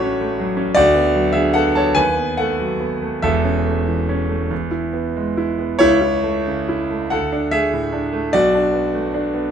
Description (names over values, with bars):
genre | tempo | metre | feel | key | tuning
classical, romantic character piece for solo piano | 48 BPM (dotted quarters) | 6/8 | uneven beats, rubato | A major | A4 = 442 Hz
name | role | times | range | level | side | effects
clear concert grand piano | solo | 0.0-9.5 s | E1 to A5 | -16 LUFS | equal | none
room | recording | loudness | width
moderate large studio reverb, RT60 1.2 s | minimal, uncompressed stereo recording | -16 LUFS | side -8 dB against mid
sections
0.0-9.5 A section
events
none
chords
0.0 Dmaj7/A; 0.8 Bm/D; 2.0 B7/D#; 3.2 A/E; 4.5 E; 5.8 A/C#; 7.1 D5; 8.3 Bm7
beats
| 0.77 1.97 | 3.23 4.51 | 5.80 7.12 | 8.34